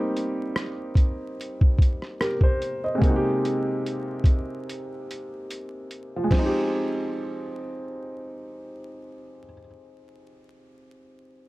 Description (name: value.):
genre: lo-fi hip hop.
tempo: 73 BPM.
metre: 4/4.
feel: swing 56% on 16ths.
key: F minor.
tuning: A4 = 440 Hz.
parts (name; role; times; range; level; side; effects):
felt-muted upright piano; accompaniment; 0.0-11.5 s; C3 to Eb5; -28 LUFS; equal; cassette tape, low-pass filter, plate reverb.
boom bap sampler-style drum kit; drums; 0.2-6.5 s; crash cymbal, hi-hat, kick drum, rim click, snare drum; -21 LUFS; equal; vintage 12-bit sampler grit.
room: moderate small room ambience, RT60 0.5 s.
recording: dark, warm production, vinyl crackle.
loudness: -22 LUFS.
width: side -20 dB against mid.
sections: 0.0-6.3 A section; 6.3-9.6 B section.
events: break 4.7-6.3.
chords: 0.0 Cm7; 3.0 Abmaj9/C; 6.3 Fm9.